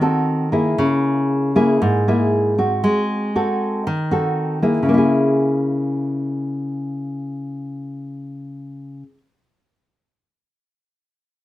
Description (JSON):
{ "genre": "bossa nova", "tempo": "117 BPM", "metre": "4/4", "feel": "straight", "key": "C# dorian", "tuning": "A4 = 440 Hz", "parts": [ { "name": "nylon-string guitar", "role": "solo", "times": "0.0-9.2 s", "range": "G#2 to A4", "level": "-18 LUFS", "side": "equal", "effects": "none" } ], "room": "light reverb", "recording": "close, detailed microphones", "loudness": "-17 LUFS", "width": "side -14 dB against mid", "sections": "0.0-4.9 A section; 4.9-9.0 B section", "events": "none", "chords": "0.0 G#7b9; 0.8 C#m6; 2.8 G#7b9; 4.9 C#m6" }